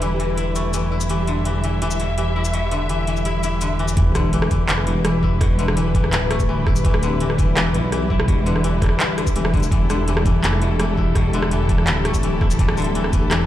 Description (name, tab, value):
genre	half-time drum and bass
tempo	167 BPM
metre	4/4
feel	half-time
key	E minor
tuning	A4 = 443 Hz
part	muted studio string section	sustained chords	0.0-13.5 s	G3 to E5	-26 LUFS	equal	sidechain pumping
part	koto	arpeggios	0.0-13.5 s	B2 to E4	-25 LUFS	left 4 dB	ping-pong delay
part	dark detuned saw bass	bass	0.0-13.5 s	D1 to B1	-21 LUFS	equal	tube saturation
part	drum and bass drum kit	drums	0.0-13.4 s	handclaps, hi-hat, rim click, shaker	-25 LUFS	right 1 dB	none
part	pulsing gated texture	texture	0.0-13.5 s	G4	-31 LUFS	left 4 dB	chorus, built-in reverb
part	electronic kick drum	drums	4.0-13.2 s	none	-19 LUFS	equal	none
part	sub drop	sound effects	4.0-5.4 s	none	-25 LUFS	right 1 dB	none
room	little or no reverb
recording	played on a big sound system in a bare room, large studio reverb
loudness	-17 LUFS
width	side -13 dB against mid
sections	0.0-4.0 A section; 4.0-13.5 B section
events	drop 4.0-13.5; impact 4.0-5.4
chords	0.0 Em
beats	0.02 0.38 0.74 | 1.10 1.46 1.81 2.17 | 2.53 2.89 3.25 3.61 | 3.97 4.33 4.69 5.05 | 5.41 5.77 6.13 6.49 | 6.84 7.20 7.56 7.92 | 8.28 8.64 9.00 9.36 | 9.72 10.08 10.44 10.80 | 11.16 11.52 11.88 12.23 | 12.59 12.95 13.31